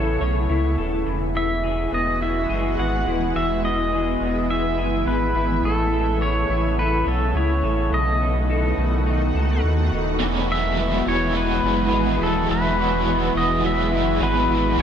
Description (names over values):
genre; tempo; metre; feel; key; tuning
dream pop; 105 BPM; 4/4; straight; E major; A4 = 440 Hz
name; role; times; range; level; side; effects
pedal steel guitar; melody; 0.0-14.8 s; A4 to F#5; -25 LUFS; equal; shimmer reverb, dub echo
shimmering ambient pad; sustained chords; 0.0-14.8 s; C#3 to F#4; -25 LUFS; right 1 dB; chorus, built-in reverb, shimmer reverb
electric guitar through a small old amp; arpeggios; 0.0-14.8 s; B2 to C#5; -26 LUFS; left 3 dB; ensemble chorus, shimmer reverb, dub echo
sub bass with octave; bass; 0.0-14.8 s; D#1 to D#2; -24 LUFS; equal; none
biting overdriven guitar; accompaniment; 10.2-14.8 s; E2 to E4; -26 LUFS; right 2 dB; tremolo, analog chorus, shimmer reverb, dub echo
room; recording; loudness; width
moderate echo chamber reverb, RT60 1.7 s, digital ambience; echo-heavy mix; -19 LUFS; side -8 dB against mid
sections
0.0-10.2 A section; 10.2-14.8 B section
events
none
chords
0.0 Aadd9; 1.1 Eadd9; 5.6 Aadd9; 7.9 B7; 10.2 Eadd9